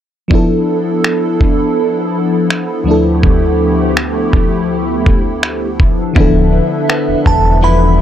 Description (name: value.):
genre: contemporary R&B.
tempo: 82 BPM.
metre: 4/4.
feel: straight.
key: D dorian.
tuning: A4 = 440 Hz.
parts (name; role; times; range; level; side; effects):
FM electric piano with soft pad layer; accompaniment; 0.3-8.0 s; D2 to A4; -15 LUFS; equal; chorus.
hollow soft pad; sustained chords; 0.5-8.0 s; D2 to E5; -17 LUFS; equal; ensemble chorus.
dusty soul sampler-style drum kit; drums; 0.3-7.4 s; finger snaps, kick drum; -12 LUFS; equal; none.
direct-recorded clean electric guitar; arpeggios; 6.2-8.0 s; D3 to E4; -18 LUFS; left 8 dB; none.
sub bass with octave; bass; 6.2-8.0 s; D1 to E1; -12 LUFS; equal; none.
glassy synth bell; melody; 7.3-8.0 s; A5 to B5; -14 LUFS; right 4 dB; chorus.
room: little or no reverb.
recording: none.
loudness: -10 LUFS.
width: side -10 dB against mid.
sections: 0.3-6.2 A section; 6.2-8.0 B section.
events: hi-hats muted 6.2-8.0.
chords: 0.3 Dm69; 2.9 G13/D; 5.8 Dm69.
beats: | 0.31 1.04 1.77 2.50 | 3.23 3.97 4.70 5.43 | 6.16 6.89 7.62.